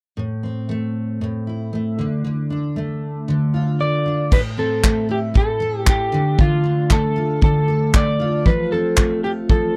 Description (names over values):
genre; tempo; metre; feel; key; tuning
acoustic pop; 116 BPM; 4/4; straight; A minor; A4 = 440 Hz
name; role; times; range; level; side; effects
picked steel-string acoustic guitar; accompaniment; 0.2-9.8 s; A2 to A4; -23 LUFS; equal; double-tracked
electric slide guitar; melody; 3.8-9.8 s; F4 to D5; -24 LUFS; equal; none
natural country drum kit; drums; 4.3-9.6 s; crash cymbal, handclaps, kick drum; -18 LUFS; equal; none
room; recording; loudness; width
little or no reverb; dry, close 1970s-style studio recording; -19 LUFS; mono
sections
0.2-4.3 A section; 4.3-9.8 B section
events
none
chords
0.2 Am; 2.0 Dm; 4.3 Am; 6.1 Dm; 8.5 F